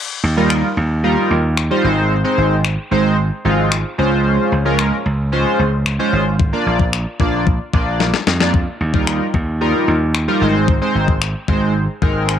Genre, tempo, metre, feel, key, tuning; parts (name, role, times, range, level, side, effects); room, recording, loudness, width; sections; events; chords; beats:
dance-pop; 112 BPM; 4/4; straight; Eb major; A4 = 440 Hz
slap bass; bass; 0.2-12.4 s; Ab1 to F2; -18 LUFS; right 1 dB; sidechain pumping
chorused polysynth; accompaniment; 0.4-12.3 s; G3 to D5; -17 LUFS; right 1 dB; sidechain pumping
clean 12-bit digital drum machine; drums; 0.5-12.4 s; finger snaps, kick drum, snare drum; -19 LUFS; left 3 dB
light reverb, digital ambience; 1960s-style stereo; -14 LUFS; side -9 dB against mid
0.0-12.4 A section
drum fill 8.0-8.5
0.0 Ebadd9; 1.8 Ab; 4.0 Dbmaj7; 6.4 Bb; 8.5 Ebadd9; 10.4 Ab
0.50 1.04 1.57 | 2.11 2.65 3.18 3.72 | 4.25 4.79 5.32 5.86 | 6.39 6.93 7.47 8.00 | 8.54 9.07 9.61 10.14 | 10.68 11.22 11.75 12.29